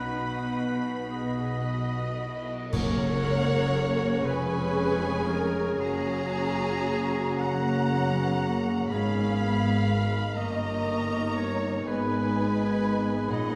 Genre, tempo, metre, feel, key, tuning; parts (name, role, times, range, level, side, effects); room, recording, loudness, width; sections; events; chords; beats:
classical, slow romantic movement for symphony orchestra; 39 BPM (dotted quarters); 6/8; uneven beats, rubato; F# major; A4 = 439 Hz
rich symphonic violin section; melody; 0.0-13.6 s; F#5 to B5; -41 LUFS; equal
clear clarinet; second line; 0.0-13.6 s; D#4 to A#4; -39 LUFS; equal
clear oboe; second line; 0.0-13.6 s; G#4 to F#5; -40 LUFS; equal
concert flute; second line; 0.0-13.6 s; B4 to C#6; -41 LUFS; equal
dark symphonic violin section; second line; 0.0-13.6 s; F#4 to D#6; -37 LUFS; equal
dark symphonic viola section; accompaniment; 0.0-13.6 s; G#3 to A#4; -36 LUFS; equal
mellow bassoon; accompaniment; 0.0-13.6 s; C#3 to B3; -39 LUFS; equal
dark French horn section; sustained chords; 0.0-13.6 s; G#3 to D#4; -39 LUFS; equal
clear symphonic double bass section; bass; 0.0-13.6 s; E#1 to B1; -34 LUFS; equal
rich symphonic cello section; bass; 0.0-13.6 s; E#2 to B2; -34 LUFS; equal
clash cymbals and concert bass drum; percussion; 2.7-4.7 s; -43 LUFS; equal
timpani; percussion; 2.7-4.2 s; F#2; -38 LUFS; equal
wet concert hall reverb, RT60 1.8 s; studio reverb; -27 LUFS; mono
0.0-2.7 A section; 2.7-13.6 B section
band accent 2.7-3.7
0.0 B; 2.7 F#; 4.3 C#7/E#; 5.8 F#; 8.9 G#m; 10.4 D#7/G; 11.9 G#m
1.12 | 2.73 4.25 | 5.79 7.39 | 8.90 10.37 | 11.86 13.31